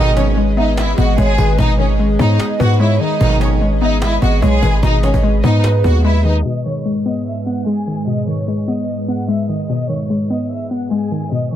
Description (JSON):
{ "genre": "hip hop, trap", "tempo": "148 BPM", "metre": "4/4", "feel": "half-time", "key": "G# minor", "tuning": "A4 = 440 Hz", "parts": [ { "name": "warm studio violin section", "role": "melody", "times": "0.0-11.6 s", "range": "G#3 to F#6", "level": "-22 LUFS", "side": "equal", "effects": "none" }, { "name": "warm velvety synth lead", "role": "second line", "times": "0.0-6.4 s", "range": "B4 to E5", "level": "-24 LUFS", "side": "right 3 dB", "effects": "chorus, ping-pong delay" }, { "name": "hollow square pluck", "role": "accompaniment", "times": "0.0-11.6 s", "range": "B2 to B3", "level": "-19 LUFS", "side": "left 3 dB", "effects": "chorus" }, { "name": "airy breathy pad", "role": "sustained chords", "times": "0.0-11.6 s", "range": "G#2 to D#5", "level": "-24 LUFS", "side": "right 1 dB", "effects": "chorus" }, { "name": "mellow brass ensemble", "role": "stabs", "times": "0.0-0.3, 3.2-3.6 s", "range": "B1 to D#3", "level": "-24 LUFS", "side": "right 7 dB", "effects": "none" }, { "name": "hard-hitting 808-style bass", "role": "bass", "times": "0.0-6.4 s", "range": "G#1 to G#2", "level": "-14 LUFS", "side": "equal", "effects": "none" }, { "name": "cajon", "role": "drums", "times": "0.1-6.4 s", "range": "none", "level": "-23 LUFS", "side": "right 1 dB", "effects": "none" } ], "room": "small room ambience", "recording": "low-pass filter", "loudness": "-13 LUFS", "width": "side -11 dB against mid", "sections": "0.0-6.5 A section; 6.5-11.6 B section", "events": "none", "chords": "0.0 G#m" }